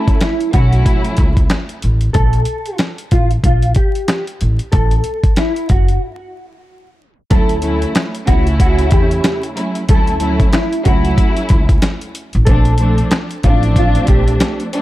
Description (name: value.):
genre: hip hop, boom-bap hip-hop.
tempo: 93 BPM.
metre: 4/4.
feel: swing 59% on 16ths.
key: D major.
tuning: A4 = 440 Hz.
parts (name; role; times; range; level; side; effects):
mellow electric guitar; melody; 0.0-14.6 s; E4 to A4; -21 LUFS; equal; ensemble chorus, high-pass filter, low-pass filter, digital delay.
warm studio string section; accompaniment; 0.0-1.7, 7.3-14.8 s; C#3 to E4; -20 LUFS; right 1 dB; cassette tape, high-pass filter, low-pass filter.
dusty soul sampler-style drum kit; drums; 0.1-14.8 s; hi-hat, kick drum, snare drum; -14 LUFS; equal; none.
upright bass; bass; 0.5-14.3 s; F#1 to E2; -15 LUFS; equal; none.
finger snap; percussion; 8.0-14.6 s; none; -34 LUFS; left 5 dB; none.
room: small room reverb.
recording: dark, warm production, vinyl crackle, tape stop.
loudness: -12 LUFS.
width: side -16 dB against mid.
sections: 0.0-7.3 A section; 7.3-14.8 B section.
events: break 2.1-7.3; tape stop 7.0-7.3.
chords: 0.0 Dmaj7 (rootless); 2.1 Gmadd9 (rootless); 4.7 F#m; 7.3 Dmaj7; 12.5 Bbmaj7.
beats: 0.21 0.86 1.50 | 2.15 2.79 3.44 4.08 | 4.73 5.38 6.02 6.67 | 7.31 7.96 8.60 9.25 | 9.89 10.54 11.18 11.83 | 12.47 13.12 13.76 14.41.